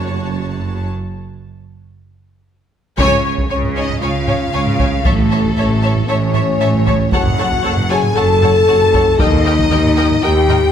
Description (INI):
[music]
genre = cinematic, epic orchestral film score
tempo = 116 BPM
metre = 4/4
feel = straight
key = unclear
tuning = A4 = 438 Hz
[part]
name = rich studio violin section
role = melody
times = 0.0-10.7 s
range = A4 to A5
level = -22 LUFS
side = left 4 dB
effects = none
[part]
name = clear symphonic violin section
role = second line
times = 0.0-10.6 s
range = Db5 to A5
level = -26 LUFS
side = left 2 dB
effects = none
[part]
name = rich symphonic viola section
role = accompaniment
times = 0.0-10.6 s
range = Gb4 to Eb5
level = -23 LUFS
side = equal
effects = none
[part]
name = mellow French horn section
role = sustained chords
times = 0.0-10.7 s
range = A3 to A4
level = -17 LUFS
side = left 4 dB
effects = none
[part]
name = dark tuba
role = bass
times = 0.0-10.6 s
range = Gb1 to Eb2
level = -22 LUFS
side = right 3 dB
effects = none
[part]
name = rich symphonic cello section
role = bass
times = 0.0-10.7 s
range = Eb2 to Db3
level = -22 LUFS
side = right 3 dB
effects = none
[part]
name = rich symphonic double bass section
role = bass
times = 0.0-10.7 s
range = Gb1 to Eb2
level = -21 LUFS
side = right 2 dB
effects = none
[part]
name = taiko ensemble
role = drums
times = 3.0-10.7 s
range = none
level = -20 LUFS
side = equal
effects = none
[sound]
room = moderate scoring stage reverb, RT60 1.7 s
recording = none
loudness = -12 LUFS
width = side -9 dB against mid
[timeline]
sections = 0.0-3.0 A section; 3.0-10.7 B section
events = break 0.9-3.0; band accent 3.0-3.5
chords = 0.0 Gbm; 0.9 N.C.; 3.0 Db; 5.1 A; 7.1 Gbm; 9.2 Eb